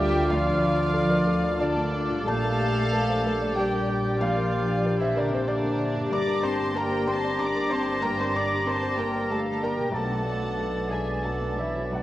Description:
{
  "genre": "cinematic",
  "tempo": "94 BPM",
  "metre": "3/4",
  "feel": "rubato",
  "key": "unclear",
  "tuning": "A4 = 441 Hz",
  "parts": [
    { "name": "warm studio violin section", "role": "melody", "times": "0.0-12.0 s", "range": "A4 to Bb5", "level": "-34 LUFS", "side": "left 2 dB", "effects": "none" },
    { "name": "mellow concert flute", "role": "second line", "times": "0.0-12.0 s", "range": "F6 to Bb6", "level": "-35 LUFS", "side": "equal", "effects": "none" },
    { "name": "warm oboe", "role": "second line", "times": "0.0-12.0 s", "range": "D5", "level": "-35 LUFS", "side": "equal", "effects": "none" },
    { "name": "warm studio violin section", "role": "second line", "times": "0.0-12.0 s", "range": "C5 to D6", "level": "-36 LUFS", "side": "equal", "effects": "none" },
    { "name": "felt-muted upright piano", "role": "accompaniment", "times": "0.0-12.0 s", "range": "B1 to D6", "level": "-30 LUFS", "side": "equal", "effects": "none" },
    { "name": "rich chamber viola section", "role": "accompaniment", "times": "0.0-12.0 s", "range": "C4 to D5", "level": "-32 LUFS", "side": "right 2 dB", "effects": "none" },
    { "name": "dark French horn section", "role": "sustained chords", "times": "0.0-12.0 s", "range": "D4 to B4", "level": "-31 LUFS", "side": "left 3 dB", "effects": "none" },
    { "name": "concert harp", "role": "arpeggios", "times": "0.0-12.0 s", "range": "G2 to D5", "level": "-37 LUFS", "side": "left 4 dB", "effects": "none" },
    { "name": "dark studio cello section", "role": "bass", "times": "0.0-12.0 s", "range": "C3 to D4", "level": "-31 LUFS", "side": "right 1 dB", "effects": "none" },
    { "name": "dark studio double bass section", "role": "bass", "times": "0.0-12.0 s", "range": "G1 to D2", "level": "-31 LUFS", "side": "right 1 dB", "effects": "none" }
  ],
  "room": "wet scoring stage reverb, RT60 1.7 s",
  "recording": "worn, warbling old tape, cassette tape, warbly pitch drift",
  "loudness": "-23 LUFS",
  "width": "side -14 dB against mid",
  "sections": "0.0-12.0 A section",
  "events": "none",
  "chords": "0.0 Dm; 2.3 Bb6; 6.1 Gm; 9.9 Bm7",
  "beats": "| 0.29 0.94 1.60 | 2.27 2.93 3.57 | 4.21 4.85 5.49 | 6.12 6.76 7.40 | 8.03 8.66 9.30 | 9.94 10.58 11.24 | 11.91"
}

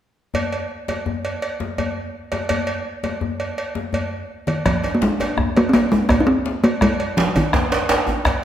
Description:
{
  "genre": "west african traditional, West African drum ensemble",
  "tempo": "111 BPM (dotted quarters)",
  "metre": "12/8",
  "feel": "straight",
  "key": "Ab major pentatonic",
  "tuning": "A4 = 440 Hz",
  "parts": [
    { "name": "cowbell", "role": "percussion", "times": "0.3-8.4 s", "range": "none", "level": "-25 LUFS", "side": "right 2 dB", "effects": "none" },
    { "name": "djembe", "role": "percussion", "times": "0.3-8.4 s", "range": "none", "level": "-27 LUFS", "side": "left 4 dB", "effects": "none" },
    { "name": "talking drum", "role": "melody", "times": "4.5-8.4 s", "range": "Eb3 to Eb4", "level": "-18 LUFS", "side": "equal", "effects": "none" },
    { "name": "bombo", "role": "percussion", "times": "4.7-8.4 s", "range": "none", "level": "-23 LUFS", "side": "equal", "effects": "none" },
    { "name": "djembe", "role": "percussion", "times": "4.8-8.4 s", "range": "none", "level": "-22 LUFS", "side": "right 2 dB", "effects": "none" }
  ],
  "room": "wet recital hall reverb, RT60 1.4 s",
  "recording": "none",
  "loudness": "-18 LUFS",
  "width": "side -10 dB against mid",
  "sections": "0.3-4.7 A section; 4.7-8.4 B section",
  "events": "none",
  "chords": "none",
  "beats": "| 0.34 0.88 1.42 1.96 | 2.50 3.04 3.58 4.12 | 4.66 5.20 5.74 6.28 | 6.82 7.36 7.90 8.44"
}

